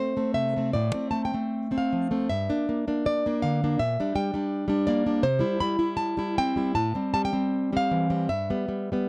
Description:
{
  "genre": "romantic piece for solo classical guitar",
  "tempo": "72-84 BPM",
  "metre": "2/4",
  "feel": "rubato",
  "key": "C major from 5.2 s",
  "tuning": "A4 = 444 Hz",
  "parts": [
    { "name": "nylon-string guitar", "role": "solo", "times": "0.0-9.1 s", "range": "G2 to B5", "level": "-23 LUFS", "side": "equal", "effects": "none" }
  ],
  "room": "little or no reverb",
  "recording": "dry, close 1970s-style studio recording",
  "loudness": "-23 LUFS",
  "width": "side -27 dB against mid",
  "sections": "0.0-9.1 A section",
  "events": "none",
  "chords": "0.0 F (rootless); 0.7 F/A; 2.3 Gm (rootless); 3.8 Gm/Bb; 5.2 C; 6.8 Am7; 8.3 Em/G"
}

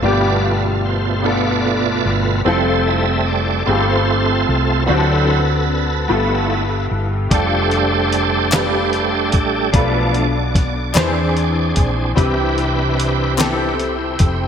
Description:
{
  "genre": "slow gospel",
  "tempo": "49 BPM (dotted quarters)",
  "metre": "6/8",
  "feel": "straight",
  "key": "unclear",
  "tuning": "A4 = 438 Hz",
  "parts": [
    { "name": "clear baby grand piano", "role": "accompaniment", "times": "0.0-14.5 s", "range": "G2 to B#4", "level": "-20 LUFS", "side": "left 3 dB", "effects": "ensemble chorus" },
    { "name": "bright tonewheel organ", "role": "sustained chords", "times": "0.0-14.5 s", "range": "B2 to E5", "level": "-19 LUFS", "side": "right 3 dB", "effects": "slow rotary speaker, overdrive, chorus vibrato" },
    { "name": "hollow-body short-scale fingered electric bass", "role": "bass", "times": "0.0-14.5 s", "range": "F1 to E2", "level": "-20 LUFS", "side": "equal", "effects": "none" },
    { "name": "dusty soul sampler-style drum kit", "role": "drums", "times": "7.3-14.4 s", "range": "hi-hat, kick drum, snare drum", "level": "-18 LUFS", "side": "equal", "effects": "none" },
    { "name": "group handclap", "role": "percussion", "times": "8.5-13.8 s", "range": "none", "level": "-27 LUFS", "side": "left 6 dB", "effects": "none" }
  ],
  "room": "moderate lush hall reverb, RT60 2.3 s",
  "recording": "bright 1980s-style digital production",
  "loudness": "-14 LUFS",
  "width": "side -8 dB against mid",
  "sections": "0.0-14.5 A section",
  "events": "tonewheel organ solo 0.0-14.5",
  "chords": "0.0 G7; 2.5 Fmaj7; 3.7 G9sus4; 4.9 D7; 6.1 G13; 7.3 F69; 9.7 Bm7b5; 11.0 Eaug7; 12.2 Cmaj7"
}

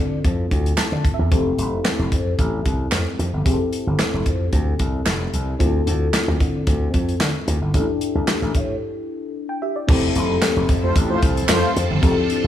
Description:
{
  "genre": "early-eighties boogie funk",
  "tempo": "112 BPM",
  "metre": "4/4",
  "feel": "straight",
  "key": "unclear",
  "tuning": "A4 = 441 Hz",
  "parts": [
    { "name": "mellow FM electric piano", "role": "accompaniment", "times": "0.0-12.5 s", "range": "C4 to A5", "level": "-24 LUFS", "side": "left 3 dB", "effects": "chorus" },
    { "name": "slap bass with an envelope filter", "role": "bass", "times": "0.0-12.5 s", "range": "F1 to D3", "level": "-22 LUFS", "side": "equal", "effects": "none" },
    { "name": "modern studio drum kit", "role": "drums", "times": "0.2-12.4 s", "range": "crash cymbal, handclaps, hi-hat, kick drum, snare drum", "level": "-21 LUFS", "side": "equal", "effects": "none" },
    { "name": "group handclap", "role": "percussion", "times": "0.8-11.6 s", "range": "none", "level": "-28 LUFS", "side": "right 4 dB", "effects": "none" },
    { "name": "phased string machine", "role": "sustained chords", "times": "9.9-12.5 s", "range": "F3 to A4", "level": "-26 LUFS", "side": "equal", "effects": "ensemble chorus, phaser" },
    { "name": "mellow synth brass", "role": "second line", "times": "10.8-11.7 s", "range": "A3 to C5", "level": "-23 LUFS", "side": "equal", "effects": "chorus" }
  ],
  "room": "little or no reverb",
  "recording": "small room ambience",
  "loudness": "-18 LUFS",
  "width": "side -11 dB against mid",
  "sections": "0.0-9.9 A section; 9.9-12.5 B section",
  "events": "FM electric piano fill 0.5-1.3; break 8.8-9.9",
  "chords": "0.0 Dm9; 1.3 Fmaj7; 5.6 Dm9; 7.7 A7sus4; 9.9 Fmaj7"
}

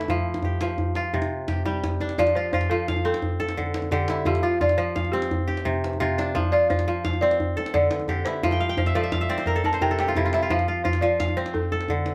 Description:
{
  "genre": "west african traditional, West African string and xylophone music",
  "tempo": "115 BPM (dotted quarters)",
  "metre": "12/8",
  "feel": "straight",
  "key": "F major",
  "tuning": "A4 = 440 Hz",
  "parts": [
    { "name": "balafon", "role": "melody", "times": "0.0-12.1 s", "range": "F4 to A5", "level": "-28 LUFS", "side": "equal", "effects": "plate reverb" },
    { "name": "kora", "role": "arpeggios", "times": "0.0-12.1 s", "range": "C3 to G5", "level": "-28 LUFS", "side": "equal", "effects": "none" },
    { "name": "djembe", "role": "percussion", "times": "0.0-12.1 s", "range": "none", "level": "-29 LUFS", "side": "equal", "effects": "none" }
  ],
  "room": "light reverb",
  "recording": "none",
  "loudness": "-24 LUFS",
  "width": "mono",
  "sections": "0.0-2.2 A section; 2.2-12.1 B section",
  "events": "balafon solo 2.2-12.1; kora fill 8.5-10.5",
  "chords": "0.1 Fsus2; 1.1 C5; 2.2 F; 3.2 Dm; 4.3 F5; 5.3 C5; 6.3 F5; 7.4 Dm; 8.4 F5; 9.5 N.C.; 10.5 F5; 11.5 Dm"
}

